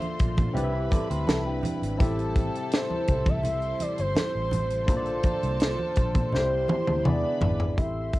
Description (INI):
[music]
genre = lush 1970s-style soul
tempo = 83 BPM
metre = 4/4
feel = straight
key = A minor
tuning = A4 = 440 Hz
[part]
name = gliding portamento lead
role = melody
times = 0.0-8.2 s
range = C5 to E5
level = -30 LUFS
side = right 1 dB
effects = chorus, cassette tape
[part]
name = warm studio string section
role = second line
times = 0.0-8.2 s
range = A4 to C6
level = -38 LUFS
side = left 1 dB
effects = cassette tape
[part]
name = barky tine electric piano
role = accompaniment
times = 0.0-8.2 s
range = G3 to E5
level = -32 LUFS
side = left 2 dB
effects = overdrive, phaser, cassette tape
[part]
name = string machine, full ensemble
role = sustained chords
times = 0.0-7.8 s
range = C3 to B4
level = -39 LUFS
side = equal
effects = ensemble chorus, cassette tape
[part]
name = tight funk drum kit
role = drums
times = 0.0-8.2 s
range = hi-hat, kick drum, snare drum, toms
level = -26 LUFS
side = equal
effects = cassette tape
[part]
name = congas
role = percussion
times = 0.0-8.2 s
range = none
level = -34 LUFS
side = right 2 dB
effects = none
[part]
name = vintage muted fingered electric bass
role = bass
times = 0.2-8.1 s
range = G1 to Bb2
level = -30 LUFS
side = equal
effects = none
[part]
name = electric guitar through a small old amp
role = riff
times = 0.5-2.0 s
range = D4 to D5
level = -35 LUFS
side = right 3 dB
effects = phaser, cassette tape
[sound]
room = light reverb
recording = home recording on cassette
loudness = -23 LUFS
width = side -18 dB against mid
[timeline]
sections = 0.0-7.8 A section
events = drum fill 6.3-7.8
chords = 0.0 Bbmaj7; 0.6 Cmaj7; 2.0 Am7; 4.9 Bbmaj7; 6.3 C; 7.1 E7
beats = 0.55 1.27 | 2.00 2.72 3.44 4.16 | 4.89 5.61 6.33 7.06 | 7.78